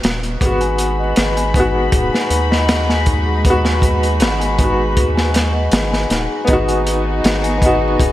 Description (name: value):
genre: trip hop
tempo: 79 BPM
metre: 4/4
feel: straight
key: G# minor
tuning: A4 = 441 Hz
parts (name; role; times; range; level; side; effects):
- clear upright piano; accompaniment; 0.0-8.1 s; B3 to F#4; -20 LUFS; equal; tremolo, vintage 12-bit sampler grit, tape echo
- round analog bass; bass; 0.0-8.1 s; D#1 to D#2; -20 LUFS; equal; none
- crunchy breakbeat drum kit; drums; 0.0-8.1 s; hi-hat, kick drum, snare drum; -18 LUFS; equal; gated reverb
- dark chamber string section; sustained chords; 0.4-8.1 s; G#3 to B5; -22 LUFS; left 1 dB; none
- large celesta; arpeggios; 0.4-8.1 s; D#4 to G#5; -23 LUFS; left 2 dB; tape echo
room: moderate lush hall reverb, RT60 2.9 s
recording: bright 1980s-style digital production, vinyl crackle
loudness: -13 LUFS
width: side -14 dB against mid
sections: 0.0-8.1 A section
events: none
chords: 0.0 G#m7